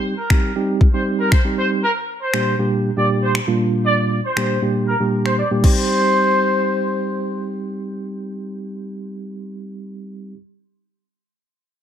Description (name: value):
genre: dance-pop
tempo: 118 BPM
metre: 4/4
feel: straight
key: C minor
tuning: A4 = 441 Hz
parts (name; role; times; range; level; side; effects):
- mellow tine electric piano; accompaniment; 0.0-10.4 s; Bb2 to G4; -21 LUFS; right 2 dB; medium stereo tremolo, sidechain pumping, low-pass filter
- warm horn section; melody; 0.2-7.4 s; Bb4 to D5; -21 LUFS; left 1 dB; sidechain pumping, low-pass filter, dub echo
- smooth R&B drum kit; drums; 0.3-5.8 s; crash cymbal, finger snaps, kick drum; -17 LUFS; left 1 dB; none
room: light reverb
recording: none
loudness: -16 LUFS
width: side -9 dB against mid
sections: 0.0-5.9 A section; 5.9-10.0 B section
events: filter sweep 0.0-5.9; drums muted 5.4-5.9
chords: 0.0 Cm; 1.8 Gm/Bb; 5.6 Cm